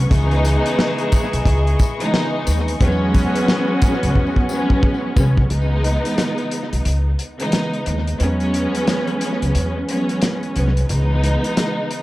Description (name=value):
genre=hip hop, boom-bap hip-hop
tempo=89 BPM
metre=4/4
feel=swing 62% on 16ths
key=C# minor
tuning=A4 = 440 Hz
part: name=warm studio string section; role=accompaniment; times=0.0-12.0 s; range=C#2 to D#4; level=-20 LUFS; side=equal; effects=cassette tape, high-pass filter, low-pass filter, tape echo
part: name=dark studio string section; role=sustained chords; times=0.0-5.5 s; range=G#4 to C#6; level=-31 LUFS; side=left 3 dB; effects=high-pass filter, low-pass filter
part: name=upright bass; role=bass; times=0.0-11.3 s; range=B1 to E2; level=-18 LUFS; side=equal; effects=none
part: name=warm horn section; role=stabs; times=0.1-5.1 s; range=G#3 to G#4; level=-27 LUFS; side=left 2 dB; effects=high-pass filter, low-pass filter, tape echo
part: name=warm soul drum kit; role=drums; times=0.1-12.0 s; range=hi-hat, kick drum, snare drum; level=-20 LUFS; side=equal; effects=tape echo
part: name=tambourine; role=percussion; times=0.4-5.4 s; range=none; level=-38 LUFS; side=left 5 dB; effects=tape echo
room=small room ambience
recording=echo-heavy mix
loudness=-16 LUFS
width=side -18 dB against mid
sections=0.0-5.5 A section; 5.5-12.0 B section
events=drum fill 4.2-5.5; break 5.5-12.0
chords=0.1 C#m9; 2.8 E69; 5.5 C#m9; 8.2 E69; 10.9 C#m9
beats=| 0.11 0.78 1.46 2.13 | 2.81 3.48 4.15 4.83 | 5.50 6.18 6.85 7.53 | 8.20 8.87 9.55 10.22 | 10.90 11.57